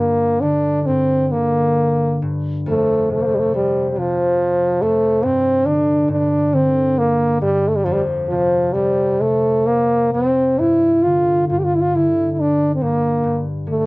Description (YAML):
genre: celtic folk, Celtic slow air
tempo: 43-48 BPM (dotted quarters)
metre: 6/8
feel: rubato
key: G dorian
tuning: A4 = 442 Hz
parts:
  - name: clear French horn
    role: melody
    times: 0.0-13.9 s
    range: F3 to G4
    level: -16 LUFS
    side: equal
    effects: cassette tape
  - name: concert harp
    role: accompaniment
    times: 0.0-13.9 s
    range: F2 to D3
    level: -21 LUFS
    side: left 1 dB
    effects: none
room: moderate studio reverb, RT60 0.5 s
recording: home recording on cassette, nothing above 10.9 kHz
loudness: -15 LUFS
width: side -23 dB against mid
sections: 0.0-13.9 A section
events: none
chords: 0.0 Gm; 2.7 F5; 5.2 G5; 7.8 F5; 10.6 G5